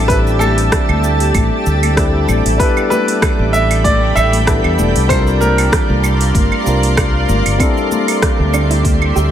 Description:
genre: sunset chillout.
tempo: 96 BPM.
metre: 4/4.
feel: swing 54% on 16ths.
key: unclear.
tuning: A4 = 440 Hz.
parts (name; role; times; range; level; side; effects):
bright grand piano; melody; 0.0-6.3 s; A4 to E5; -19 LUFS; equal; digital delay.
tine electric piano; accompaniment; 0.0-9.3 s; G3 to Bb4; -19 LUFS; moving between left 4 dB and right 5 dB; auto-pan, low-pass filter, digital delay.
shimmering ambient pad; sustained chords; 0.0-9.3 s; G4 to C6; -20 LUFS; right 1 dB; chorus, built-in reverb.
fretless electric bass; bass; 0.0-9.3 s; E1 to E2; -15 LUFS; equal; none.
electronic kick drum; drums; 0.1-9.0 s; none; -17 LUFS; equal; studio reverb.
smooth R&B drum kit; drums; 0.1-9.3 s; claves, hi-hat, rim click, shaker; -21 LUFS; right 2 dB; overdrive, studio reverb.
congas; percussion; 0.4-9.0 s; none; -24 LUFS; left 6 dB; none.
soft round pluck; arpeggios; 7.6-9.2 s; C4 to G4; -24 LUFS; right 4 dB; chorus, digital delay.
room: light reverb.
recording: none.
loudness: -11 LUFS.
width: side -10 dB against mid.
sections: 0.0-9.3 A section.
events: filter sweep on tine electric piano 0.0-9.3.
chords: 0.0 D9sus4; 2.6 A9sus4; 5.1 C9sus4; 7.6 D9sus4.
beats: | 0.10 0.72 1.35 1.97 | 2.60 3.22 3.85 4.47 | 5.10 5.72 6.35 6.97 | 7.60 8.22 8.85.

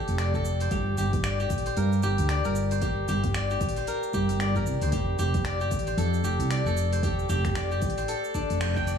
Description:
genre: organic downtempo.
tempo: 114 BPM.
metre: 4/4.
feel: swing 59% on 16ths.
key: G minor.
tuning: A4 = 440 Hz.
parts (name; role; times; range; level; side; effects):
steel-string zither; arpeggios; 0.0-9.0 s; D4 to G5; -29 LUFS; left 2 dB; digital delay.
woody fretless electric bass; bass; 0.1-9.0 s; F1 to G2; -27 LUFS; right 1 dB; sidechain pumping.
afro-pop drum kit; drums; 0.1-9.0 s; finger snaps, hi-hat, shaker; -38 LUFS; equal; studio reverb.
electronic kick drum; drums; 0.3-8.9 s; none; -31 LUFS; equal; overdrive, studio reverb.
room: little or no reverb.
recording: small room ambience.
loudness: -24 LUFS.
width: side -7 dB against mid.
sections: 0.0-9.0 A section.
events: band accent 8.6.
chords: 0.0 F; 0.7 Gm; 4.9 F.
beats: 0.19 | 0.72 1.24 1.77 2.29 | 2.82 3.35 3.87 4.40 | 4.93 5.45 5.98 6.50 | 7.03 7.56 8.08 8.61.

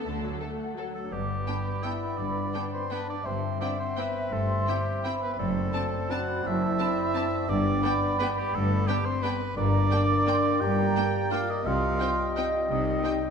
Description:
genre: classical, orchestral ballroom waltz.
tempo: 171 BPM.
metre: 3/4.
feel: uneven beats, rubato.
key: G major.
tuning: A4 = 441 Hz.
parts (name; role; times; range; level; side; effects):
rich studio violin section; second line; 0.0-13.1 s; D4 to A4; -43 LUFS; left 1 dB; none.
rich symphonic viola section; accompaniment; 0.0-13.1 s; F#3 to C4; -39 LUFS; equal; none.
concert harp; arpeggios; 0.0-13.3 s; F#2 to A5; -35 LUFS; left 6 dB; none.
rich symphonic cello section; bass; 0.1-13.0 s; F#2 to D3; -34 LUFS; right 1 dB; none.
rich symphonic double bass section; bass; 0.1-13.0 s; F#1 to D2; -33 LUFS; right 2 dB; none.
warm symphonic violin section; melody; 0.4-13.1 s; A4 to A5; -39 LUFS; left 2 dB; none.
warm oboe; second line; 0.9-13.2 s; G4 to G5; -32 LUFS; right 3 dB; none.
dark French horn section; sustained chords; 0.9-13.2 s; G3 to G4; -34 LUFS; left 3 dB; none.
mellow clarinet; second line; 1.1-13.3 s; D5 to E5; -35 LUFS; left 3 dB; none.
mellow large flute ensemble; second line; 1.1-13.3 s; Eb5 to D6; -34 LUFS; right 2 dB; none.
mellow bassoon; accompaniment; 1.1-13.3 s; G3 to C4; -36 LUFS; right 3 dB; none.
room: wet scoring stage reverb, RT60 1.9 s.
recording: minimal, uncompressed stereo recording.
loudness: -25 LUFS.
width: side -6 dB against mid.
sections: 0.0-1.1 A section; 1.1-13.3 B section.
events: none.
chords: 0.0 D; 1.1 G; 3.3 C/G; 5.4 D7/F#; 7.5 G; 9.6 Gm; 11.7 Cm.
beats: | 0.06 0.40 0.77 | 1.11 1.47 1.84 | 2.19 2.54 2.91 | 3.26 3.61 3.98 | 4.32 4.67 5.04 | 5.39 5.74 6.11 | 6.45 6.79 7.15 | 7.49 7.83 8.20 | 8.54 8.88 9.23 | 9.57 9.91 10.27 | 10.62 10.96 11.32 | 11.65 12.00 12.36 | 12.70 13.04.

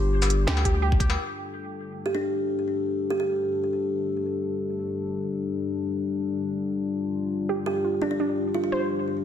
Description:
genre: half-time drum and bass.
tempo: 171 BPM.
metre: 4/4.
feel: half-time.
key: unclear.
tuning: A4 = 440 Hz.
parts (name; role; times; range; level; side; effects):
dark analog pad; sustained chords; 0.0-9.2 s; G3 to A4; -30 LUFS; left 4 dB; chorus, sidechain pumping.
long sustained 808-style bass; bass; 0.0-1.2 s; G1 to D2; -23 LUFS; equal; none.
industrial drum kit; drums; 0.2-1.2 s; hi-hat, shaker, snare drum, struck metal; -29 LUFS; left 2 dB; none.
warbly dusty pluck; arpeggios; 0.5-1.2, 7.5-8.9 s; D4 to C5; -31 LUFS; right 4 dB; chorus, dub echo.
electronic kick drum; drums; 0.7-1.1 s; none; -23 LUFS; equal; none.
kalimba; melody; 2.1-3.3, 7.7-8.7 s; D4 to G4; -28 LUFS; equal; ping-pong delay.
room: light reverb.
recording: dense, heavily limited modern master.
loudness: -24 LUFS.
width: side -9 dB against mid.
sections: 0.0-1.2 A section; 1.2-9.2 B section.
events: drop 0.0-1.2.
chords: 0.0 G5.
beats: 0.13 0.48 0.83 | 1.18 1.53 1.88 2.23 | 2.58 2.93 3.28 3.63 | 3.98 4.34 4.69 5.04 | 5.39 5.74 6.09 6.44 | 6.79 7.14 7.49 7.84 | 8.20 8.55 8.90.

